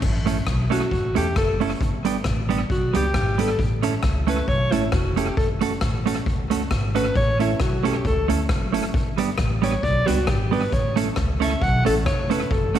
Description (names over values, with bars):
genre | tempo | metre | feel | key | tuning
ska | 134 BPM | 4/4 | swing 55% on 8ths | A mixolydian | A4 = 440 Hz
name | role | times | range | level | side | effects
upright bass | bass | 0.0-12.8 s | F1 to E2 | -25 LUFS | equal | none
street-band drum kit | drums | 0.0-12.8 s | crash cymbal, hi-hat, kick drum, rim click | -25 LUFS | left 1 dB | tape echo
clean electric guitar | accompaniment | 0.3-12.8 s | G3 to A4 | -25 LUFS | right 6 dB | spring reverb
clear alto saxophone | melody | 0.7-12.8 s | E4 to F#5 | -25 LUFS | left 1 dB | none
room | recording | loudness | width
moderate echo chamber reverb, RT60 1.9 s, small room ambience | 1960s-style stereo, vinyl crackle | -19 LUFS | side -10 dB against mid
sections
0.0-12.8 A section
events
alto saxophone solo 0.0-12.8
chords
0.0 A; 1.8 G; 3.6 A; 5.4 F#m; 7.2 A; 8.9 G; 10.7 A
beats
| 0.02 0.47 0.91 1.36 | 1.80 2.25 2.70 3.14 | 3.59 4.03 4.48 4.93 | 5.37 5.82 6.26 6.71 | 7.16 7.60 8.05 8.49 | 8.94 9.39 9.83 10.28 | 10.72 11.17 11.62 12.06 | 12.51